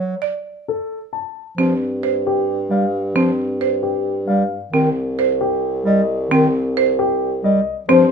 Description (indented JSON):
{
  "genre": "classical, minimalist pattern music",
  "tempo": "266 BPM (eighths)",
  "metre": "7/8",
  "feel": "straight",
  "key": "unclear",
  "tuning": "A4 = 440 Hz",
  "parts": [
    { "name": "warm bass clarinet", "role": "accompaniment", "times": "0.0-8.0 s", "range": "Eb3 to G3", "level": "-19 LUFS", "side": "right 2 dB", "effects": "none" },
    { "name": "buzzing marimba with hard mallets", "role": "arpeggios", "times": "0.2-8.1 s", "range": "C4 to D5", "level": "-19 LUFS", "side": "right 2 dB", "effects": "none" },
    { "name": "dark baby grand piano", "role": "melody", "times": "0.7-8.1 s", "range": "G4 to A5", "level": "-20 LUFS", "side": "left 5 dB", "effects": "none" },
    { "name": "dark bassoon", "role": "bass", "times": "1.6-8.1 s", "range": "C2 to G2", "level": "-22 LUFS", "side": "right 1 dB", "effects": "none" }
  ],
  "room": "light reverb",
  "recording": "minimal, uncompressed stereo recording",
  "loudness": "-16 LUFS",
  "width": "side -6 dB against mid",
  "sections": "0.0-1.6 A section; 1.6-8.1 B section",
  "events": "none",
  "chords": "0.0 D; 1.6 Gsus4; 4.7 N.C."
}